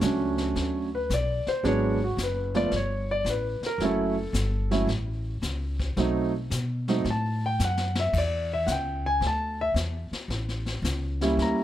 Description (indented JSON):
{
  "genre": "jazz piano trio",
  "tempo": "111 BPM",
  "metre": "4/4",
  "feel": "swing 68% on 8ths",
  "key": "B minor",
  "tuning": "A4 = 439 Hz",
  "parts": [
    { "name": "warm concert grand piano", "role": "melody", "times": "0.0-11.6 s", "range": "E#3 to Bb5", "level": "-26 LUFS", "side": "right 1 dB", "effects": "plate reverb" },
    { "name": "upright bass", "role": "bass", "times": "0.0-11.6 s", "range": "F#1 to B2", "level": "-29 LUFS", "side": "equal", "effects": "none" },
    { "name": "vintage brush drum kit", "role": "drums", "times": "0.0-11.6 s", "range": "brushed snare drum, crash cymbal, hi-hat, kick drum, snare drum", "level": "-34 LUFS", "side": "left 3 dB", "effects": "none" }
  ],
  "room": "light reverb",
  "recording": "none",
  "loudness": "-25 LUFS",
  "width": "side -12 dB against mid",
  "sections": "0.0-11.6 A section",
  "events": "grand piano solo 0.0-11.6; drum fill 7.6-8.1",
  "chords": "0.0 Bm7; 1.6 G#m7b5; 2.7 Gsus2; 3.8 F#m7; 6.0 B7b9; 8.1 C#m; 10.3 A7b9"
}